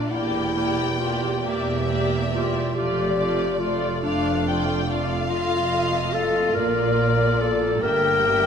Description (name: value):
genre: classical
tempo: 47 BPM (dotted quarters)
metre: 6/8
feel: rubato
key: unclear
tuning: A4 = 438 Hz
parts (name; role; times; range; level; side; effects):
- dark symphonic violin section; melody; 0.0-8.5 s; D5 to E5; -32 LUFS; left 3 dB; none
- mellow clarinet; second line; 0.0-8.5 s; D4 to Bb4; -24 LUFS; left 2 dB; none
- warm studio violin section; second line; 0.0-8.5 s; D5 to G5; -28 LUFS; left 3 dB; none
- rich studio viola section; accompaniment; 0.0-8.5 s; A3 to G4; -28 LUFS; right 2 dB; none
- rich symphonic cello section; bass; 0.1-8.5 s; E2 to Bb2; -29 LUFS; right 2 dB; none
- warm symphonic double bass section; bass; 0.1-8.5 s; E1 to Bb1; -29 LUFS; right 4 dB; none
room: wet concert hall reverb, RT60 2.2 s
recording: minimal, uncompressed stereo recording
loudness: -20 LUFS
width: side -7 dB against mid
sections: 0.0-8.5 A section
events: none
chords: 0.1 Em7b5; 2.7 Dm/F; 6.6 Bb; 7.8 Edim/G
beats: | 0.11 1.44 | 2.75 4.03 | 5.30 6.56 | 7.83